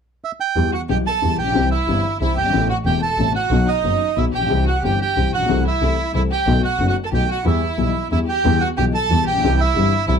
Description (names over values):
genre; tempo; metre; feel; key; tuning
tango; 183 BPM; 3/4; rubato; E harmonic minor; A4 = 439 Hz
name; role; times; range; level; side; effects
bandoneon; melody; 0.2-10.2 s; D#5 to A5; -22 LUFS; right 9 dB; none
warm upright piano; accompaniment; 0.6-10.2 s; E1 to A4; -22 LUFS; left 7 dB; none
rich double bass; bass; 0.6-10.2 s; E1 to E2; -21 LUFS; right 1 dB; none
rich studio violin section; second line; 0.7-10.1 s; D#4 to A4; -24 LUFS; left 2 dB; none
room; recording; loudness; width
light reverb; dark, warm production, faint mains hum; -16 LUFS; side -7 dB against mid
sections
0.6-8.4 A section; 8.4-10.2 A section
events
none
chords
0.0 N.C.; 0.6 Em; 1.6 C; 2.5 Amadd9; 3.5 B; 4.5 C; 5.5 Am/C; 6.5 B7; 7.4 Em; 9.4 C